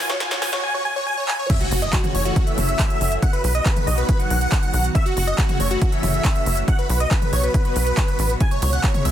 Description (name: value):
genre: uplifting trance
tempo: 139 BPM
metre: 4/4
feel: straight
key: F# dorian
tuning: A4 = 440 Hz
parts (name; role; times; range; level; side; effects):
- big supersaw lead; melody; 0.0-9.1 s; F#4 to G#5; -24 LUFS; equal; sidechain pumping, digital delay
- lush unison pad; sustained chords; 0.0-9.1 s; B2 to F#4; -29 LUFS; equal; chorus, phaser, sidechain pumping
- tight sequencer bass; bass; 0.0-9.1 s; E1 to C#2; -21 LUFS; equal; sidechain pumping
- riser and impact; sound effects; 0.0-3.2 s; none; -31 LUFS; equal; none
- big-room dance drum kit; drums; 0.1-9.1 s; crash cymbal, handclaps, hi-hat, ride cymbal, snare drum, toms; -27 LUFS; equal; high-pass filter on snare, sidechain pumping on hats, high-pass filter on hats, sidechain pumping on toms, high-pass filter on toms, sidechain pumping on cymbals, high-pass filter on cymbals, high-pass filter on room
- electronic kick drum; drums; 0.2-8.9 s; none; -20 LUFS; equal; high-pass filter on kick, high-pass filter on room
room: little or no reverb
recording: dense, heavily limited modern master, high-pass filter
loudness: -18 LUFS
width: side -11 dB against mid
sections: 0.0-1.5 A section; 1.5-9.1 B section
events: build-up 0.0-1.5; drum fill 0.0-0.6, 1.3; riser 0.0-0.6; drop 1.5-9.1; impact 1.5-3.2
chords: 0.0 Esus2; 1.5 F#m7; 3.2 B; 5.0 F#m7; 6.7 B5; 8.4 C#m